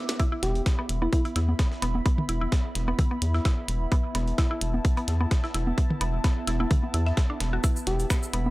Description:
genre	minimal techno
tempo	129 BPM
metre	4/4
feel	swing 54% on 16ths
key	unclear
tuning	A4 = 440 Hz
part	warbly tape-like pad	texture	0.0-8.5 s	B3 to D6	-34 LUFS	right 1 dB	chorus, built-in reverb, sidechain pumping
part	breakbeat sampler-style drum kit	drums	0.1-8.5 s	hi-hat, snare drum	-39 LUFS	equal	high-pass filter on snare, high-pass filter on hats, high-pass filter on room
part	minimal click drum kit	drums	0.1-8.4 s	finger snaps, hi-hat, shaker, snare drum	-32 LUFS	equal	none
part	mallet-like synth pluck	riff	0.2-8.4 s	B3 to E5	-34 LUFS	equal	chorus, sidechain pumping, tape echo
part	electronic kick drum	drums	0.2-8.2 s	none	-24 LUFS	equal	none
part	soft struck synth lead	melody	0.4-1.2, 7.9-8.1 s	E4 to G4	-32 LUFS	equal	chorus, cassette tape, analog delay
part	rubbery square bass	bass	0.4-8.5 s	E1 to E2	-26 LUFS	equal	sidechain pumping
part	electronic congas and toms	percussion	1.0-8.5 s	none	-31 LUFS	right 1 dB	none
room	little or no reverb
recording	dry, gritty hardware recording, transformer saturation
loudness	-23 LUFS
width	side -19 dB against mid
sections	0.0-8.5 A section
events	break 0.0; drum fill 0.0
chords	0.0 E5

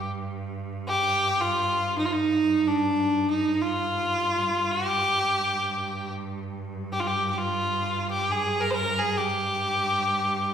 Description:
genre	Arabic maqam ensemble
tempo	free time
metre	none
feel	none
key	unclear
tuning	A4 = 439 Hz
part	clear violin	melody	0.0-10.5 s	D4 to C5	-24 LUFS	equal	none
part	clear cello	drone	0.0-10.5 s	G2	-33 LUFS	right 3 dB	none
room	wet recital hall reverb, RT60 1.5 s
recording	recorded in a church or concert hall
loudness	-23 LUFS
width	side -8 dB against mid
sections	0.0-10.5 A section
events	none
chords	none

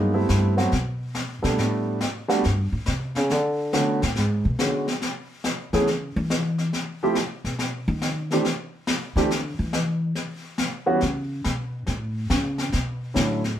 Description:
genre	jazz piano trio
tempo	140 BPM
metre	4/4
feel	swing 67% on 8ths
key	B minor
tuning	A4 = 441 Hz
part	warm concert grand piano	melody	0.0-13.4 s	D3 to A4	-23 LUFS	right 2 dB	none
part	upright bass	bass	0.0-13.6 s	G2 to E3	-25 LUFS	equal	none
part	snare drum and brushed snare drum	drums	0.3-13.6 s	none	-28 LUFS	left 1 dB	none
room	moderate studio reverb, RT60 0.6 s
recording	band playing live in one room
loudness	-22 LUFS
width	side -10 dB against mid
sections	0.0-11.9 A section; 11.9-13.6 A section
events	upright bass solo 0.0-13.6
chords	0.0 Am7; 0.7 N.C.; 1.6 Gadd9; 3.3 Bm7; 4.2 G#m7b5; 5.0 A (rootless); 6.7 N.C.; 11.0 Bsus2; 11.9 Dmaj7(no3) (rootless)

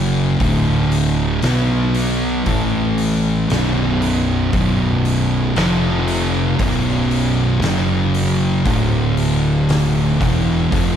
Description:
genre	stoner and doom metal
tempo	58 BPM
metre	4/4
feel	straight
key	B minor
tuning	A4 = 440 Hz
part	thick fuzz guitar	riff	0.0-11.0 s	B1 to B3	-20 LUFS	left 8 dB	distortion
part	thick fuzz guitar	riff	0.0-11.0 s	B1 to B3	-19 LUFS	right 7 dB	distortion
part	fuzz fingered electric bass	bass	0.0-11.0 s	B0 to B1	-22 LUFS	equal	overdrive
part	oversized low-tuned drum kit	drums	0.4-11.0 s	hi-hat, kick drum, snare drum	-24 LUFS	equal	none
room	studio reverb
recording	dark, warm production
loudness	-15 LUFS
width	side -9 dB against mid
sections	0.0-11.0 A section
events	none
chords	0.4 D5; 1.4 B5; 2.5 A5; 3.5 B5; 5.6 F5; 6.6 B5; 7.6 F#5; 8.7 D5; 10.2 E5

